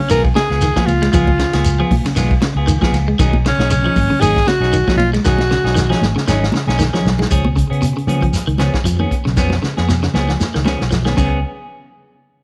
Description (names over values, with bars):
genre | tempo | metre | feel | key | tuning
afrobeat | 116 BPM | 4/4 | swing 55% on 16ths | Db mixolydian | A4 = 440 Hz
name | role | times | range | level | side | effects
bright alto saxophone | melody | 0.0-6.0 s | Db4 to Bb4 | -20 LUFS | equal | none
electric guitar at the edge of break-up | arpeggios | 0.0-11.3 s | Cb3 to Ab3 | -23 LUFS | equal | slapback echo
clean electric guitar | stabs | 0.1-11.4 s | F3 to Ab4 | -26 LUFS | equal | spring reverb
fingered electric bass | bass | 0.1-11.4 s | Ab1 to Db3 | -20 LUFS | equal | none
vintage drum kit | drums | 0.1-11.3 s | crash cymbal, hi-hat, kick drum, ride cymbal, snare drum | -23 LUFS | equal | none
shekere | percussion | 0.1-11.3 s | none | -26 LUFS | equal | none
congas | percussion | 0.4-11.3 s | none | -26 LUFS | equal | none
room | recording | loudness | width
little or no reverb | none | -16 LUFS | mono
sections
0.0-7.3 A section; 7.3-11.4 B section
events
drum fill 5.2-7.3, 9.4-11.4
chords
0.0 Db7; 3.2 Cb69; 7.3 Db7; 11.4 N.C.